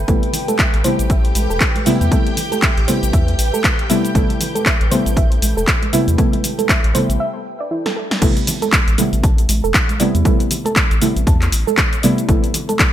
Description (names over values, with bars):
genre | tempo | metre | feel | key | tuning
deep house | 118 BPM | 4/4 | swing 58% on 16ths | A minor | A4 = 442 Hz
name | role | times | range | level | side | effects
deep mellow chord stab | stabs | 0.0-12.9 s | C3 to E4 | -19 LUFS | equal | chorus, cassette tape, sidechain pumping, ping-pong delay
round analog bass | bass | 0.0-12.4 s | E1 to E2 | -18 LUFS | equal | sidechain pumping
granular cloud pad | texture | 0.0-7.2 s | A4 to G5 | -29 LUFS | equal | built-in reverb, wide subtle chorus, sidechain pumping
soft round pluck | arpeggios | 0.1-12.8 s | A3 to A5 | -24 LUFS | right 4 dB | chorus, sidechain pumping, ping-pong delay
electronic kick drum | drums | 0.1-12.9 s | none | -17 LUFS | equal | none
punchy analog drum machine | drums | 0.1-12.9 s | cabasa, crash cymbal, handclaps, hi-hat, snare drum | -19 LUFS | left 1 dB | gated reverb
string machine, violins | texture | 0.1-7.2 s | G4 to G5 | -30 LUFS | equal | ensemble chorus, sidechain pumping
congas | percussion | 0.3-12.8 s | none | -28 LUFS | right 3 dB | sidechain pumping on perc
room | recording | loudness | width
little or no reverb | bright 1980s-style digital production | -14 LUFS | side -11 dB against mid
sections
0.0-8.2 A section; 8.2-12.9 B section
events
break 7.2-8.2; drum fill 7.8-8.2; drop 8.2-12.9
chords
0.0 Am9